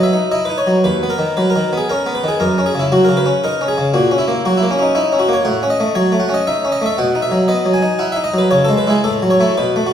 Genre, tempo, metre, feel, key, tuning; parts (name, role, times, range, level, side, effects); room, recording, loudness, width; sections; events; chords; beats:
classical, baroque-style suite movement for harpsichord; 117 BPM; 3/4; rubato; A4 = 441 Hz
harpsichord; solo; 0.0-9.9 s; D#2 to G#5; -13 LUFS; equal
wet recital hall reverb, RT60 1.4 s; heard from further back in the room; -13 LUFS; side -9 dB against mid
0.0-9.9 A section
0.0 B; 0.9 B/D#; 2.4 F#5; 3.9 F#/A#; 5.5 F#m/A; 7.0 B; 8.5 C#m; 9.0 F#m7/A
0.32 | 0.85 1.37 1.89 | 2.41 2.92 3.43 | 3.94 4.45 4.95 | 5.46 5.96 6.46 | 6.98 7.49 8.00 | 8.52 9.05 9.59